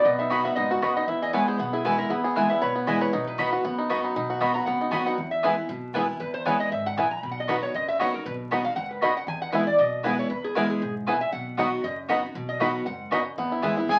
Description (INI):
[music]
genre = bluegrass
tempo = 234 BPM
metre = 4/4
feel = swing 54% on 8ths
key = unclear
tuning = A4 = 440 Hz
[part]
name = lap resonator guitar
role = second line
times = 0.0-13.2 s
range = F#4 to B5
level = -30 LUFS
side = equal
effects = none
[part]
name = picked steel-string acoustic guitar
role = accompaniment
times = 0.0-14.0 s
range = E2 to F#4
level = -34 LUFS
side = equal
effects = none
[part]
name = bluegrass banjo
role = arpeggios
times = 0.0-14.0 s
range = B3 to B4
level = -29 LUFS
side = equal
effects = none
[part]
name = upright bass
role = bass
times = 0.0-14.0 s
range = F#1 to F#2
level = -44 LUFS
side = equal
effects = none
[part]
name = mandolin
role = stabs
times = 0.3-13.7 s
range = B3 to B5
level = -29 LUFS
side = equal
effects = none
[part]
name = clear fiddle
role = melody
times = 13.9-14.0 s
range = G#5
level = -21 LUFS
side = equal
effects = none
[sound]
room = wet studio ambience, RT60 0.5 s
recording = very old 78 rpm record, vinyl crackle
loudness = -26 LUFS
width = mono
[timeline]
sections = 0.0-5.2 A section; 5.2-13.4 A section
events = resonator guitar played with a steel bar solo 0.0-13.4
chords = 0.0 B; 1.1 E; 3.1 B; 5.2 E; 7.2 B; 9.3 E; 11.3 B; 13.4 E